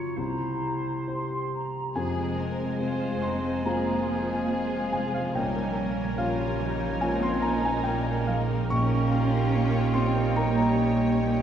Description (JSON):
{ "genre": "cinematic, emotional film score for orchestra", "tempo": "71 BPM", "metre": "4/4", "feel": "rubato", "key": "F minor", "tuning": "A4 = 440 Hz", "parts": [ { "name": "clear oboe", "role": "second line", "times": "0.0-11.4 s", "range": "C5 to Ab5", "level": "-38 LUFS", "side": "right 2 dB", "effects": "none" }, { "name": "mellow clarinet", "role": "second line", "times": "0.0-11.4 s", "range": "E4 to Eb5", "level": "-36 LUFS", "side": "equal", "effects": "none" }, { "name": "felt-muted upright piano", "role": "accompaniment", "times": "0.0-11.4 s", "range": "C2 to Db6", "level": "-31 LUFS", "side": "left 1 dB", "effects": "none" }, { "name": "concert harp", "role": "arpeggios", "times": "0.0-11.4 s", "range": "F2 to C6", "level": "-35 LUFS", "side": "left 2 dB", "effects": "none" }, { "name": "flute section", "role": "second line", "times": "0.2-2.0 s", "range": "Bb5 to C6", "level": "-35 LUFS", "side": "right 1 dB", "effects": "none" }, { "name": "clear studio violin section", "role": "melody", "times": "2.0-11.4 s", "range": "Ab4 to Db5", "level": "-37 LUFS", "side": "left 2 dB", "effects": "none" }, { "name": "warm studio violin section", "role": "second line", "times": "2.0-11.4 s", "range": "C4 to F4", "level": "-37 LUFS", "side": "left 1 dB", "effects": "none" }, { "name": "clear studio viola section", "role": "accompaniment", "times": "2.0-11.4 s", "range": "F3 to Bb3", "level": "-35 LUFS", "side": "left 1 dB", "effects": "none" }, { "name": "dark French horn section", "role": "sustained chords", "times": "2.0-11.4 s", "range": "G3 to Eb4", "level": "-35 LUFS", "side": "left 2 dB", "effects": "none" }, { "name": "warm studio cello section", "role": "bass", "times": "2.0-11.4 s", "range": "F3 to Db4", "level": "-30 LUFS", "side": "equal", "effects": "none" }, { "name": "warm studio double bass section", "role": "bass", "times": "2.0-11.4 s", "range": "F1 to Bb1", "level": "-30 LUFS", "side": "right 5 dB", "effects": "none" } ], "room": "wet scoring stage reverb, RT60 2.0 s", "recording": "heard from further back in the room, nothing above 11.0 kHz", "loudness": "-24 LUFS", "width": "side -9 dB against mid", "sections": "0.0-2.0 A section; 2.0-11.4 A section", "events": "none", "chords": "0.2 C7; 2.0 Fm; 5.4 Bbm7; 8.7 Eb7/Bb" }